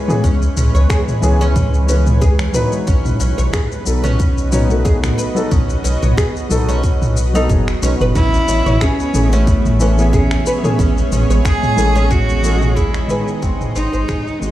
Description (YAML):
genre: organic downtempo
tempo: 91 BPM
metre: 4/4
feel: swing 54% on 16ths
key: unclear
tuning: A4 = 440 Hz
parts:
  - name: felt-muted upright piano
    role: accompaniment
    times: 0.0-14.5 s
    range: D#3 to C#5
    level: -22 LUFS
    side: left 2 dB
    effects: sidechain pumping, digital delay
  - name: granular cloud pad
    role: sustained chords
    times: 0.0-14.5 s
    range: E3 to E5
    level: -24 LUFS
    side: right 1 dB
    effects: built-in reverb, vintage 12-bit sampler grit, sidechain pumping
  - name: oud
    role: arpeggios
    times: 0.0-14.2 s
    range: B#3 to C#5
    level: -24 LUFS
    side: right 1 dB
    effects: digital delay
  - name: organic electronic drum kit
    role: drums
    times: 0.1-14.5 s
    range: finger snaps, shaker, toms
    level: -22 LUFS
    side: equal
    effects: none
  - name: warm sub bass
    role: bass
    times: 0.2-14.5 s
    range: F#1 to C#2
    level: -16 LUFS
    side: equal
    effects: sidechain pumping
  - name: electronic kick drum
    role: drums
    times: 0.2-14.2 s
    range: none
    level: -16 LUFS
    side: equal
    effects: none
  - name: twinkling granular texture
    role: texture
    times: 8.9-14.5 s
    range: G#3 to G#4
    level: -30 LUFS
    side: right 1 dB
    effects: none
  - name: warm cello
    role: melody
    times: 8.2-14.5 s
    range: G#3 to G#4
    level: -20 LUFS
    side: right 1 dB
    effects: tape echo
room: little or no reverb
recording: played on a big sound system in a bare room, stone room reverb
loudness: -13 LUFS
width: side -14 dB against mid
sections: 0.0-14.5 A section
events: fade-out 11.7-14.5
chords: 0.0 C#m7; 2.9 B7; 8.2 Amaj7; 13.4 G#7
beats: | 0.24 0.91 1.56 2.22 | 2.88 3.54 4.20 4.86 | 5.52 6.18 6.84 7.50 | 8.16 8.82 9.48 10.13 | 10.79 11.45 12.11 12.77 | 13.43 14.09